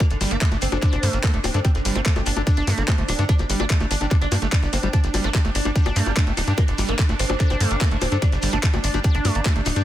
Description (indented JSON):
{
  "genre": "psychedelic trance",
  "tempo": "146 BPM",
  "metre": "4/4",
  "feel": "straight",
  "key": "G minor",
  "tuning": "A4 = 440 Hz",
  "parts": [
    { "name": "oud", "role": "melody", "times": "0.0-9.8 s", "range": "D3 to Eb4", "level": "-29 LUFS", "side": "equal", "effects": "phaser, sidechain pumping, dub echo" },
    { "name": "swarming drone", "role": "sustained chords", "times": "0.0-9.8 s", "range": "D4", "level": "-31 LUFS", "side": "right 3 dB", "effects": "built-in reverb, sidechain pumping" },
    { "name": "overdriven acid bass", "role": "riff", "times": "0.0-9.8 s", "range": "G3 to D4", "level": "-29 LUFS", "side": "moving between left 3 dB and right 5 dB", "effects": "auto-pan, vintage 12-bit sampler grit, sidechain pumping, dub echo" },
    { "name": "electronic kick drum", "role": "drums", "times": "0.0-9.5 s", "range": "none", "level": "-19 LUFS", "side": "equal", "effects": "none" },
    { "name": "garage drum kit", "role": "drums", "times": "0.0-9.8 s", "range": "bongos, handclaps, hi-hat", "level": "-27 LUFS", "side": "left 3 dB", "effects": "none" },
    { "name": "shekere", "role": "percussion", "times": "0.0-9.8 s", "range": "none", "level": "-37 LUFS", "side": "left 1 dB", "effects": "none" },
    { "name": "tight sequencer bass", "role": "bass", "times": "0.1-9.8 s", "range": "D1 to G2", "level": "-23 LUFS", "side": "equal", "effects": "none" }
  ],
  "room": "little or no reverb",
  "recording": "dense, heavily limited modern master",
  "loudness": "-18 LUFS",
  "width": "side -13 dB against mid",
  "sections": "0.0-9.8 A section",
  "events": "none",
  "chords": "0.0 G5"
}